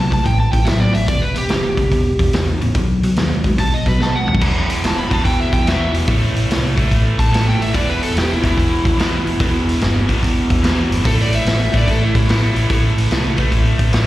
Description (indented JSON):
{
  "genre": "blues rock power trio and southern rock",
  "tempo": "145 BPM",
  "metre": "4/4",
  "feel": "swing 67% on 8ths",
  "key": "E minor",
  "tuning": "A4 = 442 Hz",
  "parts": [
    { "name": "overdriven slide guitar", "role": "melody", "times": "0.0-12.8 s", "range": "E4 to B5", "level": "-22 LUFS", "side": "equal", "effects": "slapback echo" },
    { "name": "biting overdriven guitar", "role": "riff", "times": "0.0-14.1 s", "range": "E2 to A3", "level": "-20 LUFS", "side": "equal", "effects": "slapback echo" },
    { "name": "hollow-body short-scale fingered electric bass", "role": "bass", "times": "0.0-14.1 s", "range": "E1 to B2", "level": "-19 LUFS", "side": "equal", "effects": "none" },
    { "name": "vintage drum kit", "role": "drums", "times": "0.1-14.1 s", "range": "crash cymbal, hi-hat, kick drum, snare drum, toms", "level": "-18 LUFS", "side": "equal", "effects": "none" }
  ],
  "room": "small room ambience",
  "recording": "live gig heard through the venue's PA, recital hall reverb",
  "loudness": "-14 LUFS",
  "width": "side -15 dB against mid",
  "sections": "0.0-4.4 A section; 4.4-14.1 B section",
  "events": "drum fill 4.0-4.4; electric slide guitar solo 4.4-14.1",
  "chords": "0.0 Am; 1.1 Em; 2.8 B; 4.4 E5; 6.1 Am; 7.7 Em; 11.1 A5"
}